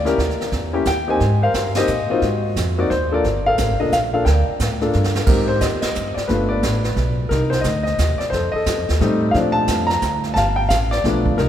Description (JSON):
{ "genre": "jazz piano trio", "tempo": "177 BPM", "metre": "3/4", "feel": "swing 63% on 8ths", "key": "G minor", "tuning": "A4 = 439 Hz", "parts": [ { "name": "warm baby grand piano", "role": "melody", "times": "0.0-11.5 s", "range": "F3 to Bb5", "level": "-19 LUFS", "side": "left 2 dB", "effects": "none" }, { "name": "upright bass", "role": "bass", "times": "0.0-11.5 s", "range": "F1 to Bb2", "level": "-21 LUFS", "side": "right 1 dB", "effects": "none" }, { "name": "jazz brush drum kit", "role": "drums", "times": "0.1-11.5 s", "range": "brushed snare drum, crash cymbal, hi-hat, kick drum, ride cymbal, snare drum", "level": "-25 LUFS", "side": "right 2 dB", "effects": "none" } ], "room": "moderate cathedral reverb, RT60 4.3 s", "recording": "recorded in a church or concert hall", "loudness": "-16 LUFS", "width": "side -10 dB against mid", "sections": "0.0-5.3 A section; 5.3-11.5 B section", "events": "band accent 1.7, 5.8; drum fill 4.9-5.3", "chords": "0.2 Eb(b9); 1.2 Abmaj9; 2.2 Ab9; 3.2 Gm9; 5.3 Abmaj7; 6.3 G7; 7.3 Cm; 8.3 F7; 9.3 Bbmaj9; 10.4 G7", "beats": "| 0.18 0.53 0.86 | 1.21 1.54 1.89 | 2.23 2.56 2.90 | 3.24 3.58 3.92 | 4.26 4.60 4.94 | 5.28 5.62 5.96 | 6.30 6.64 6.97 | 7.31 7.65 7.99 | 8.33 8.67 9.01 | 9.35 9.69 10.03 | 10.37 10.71 11.04 | 11.38" }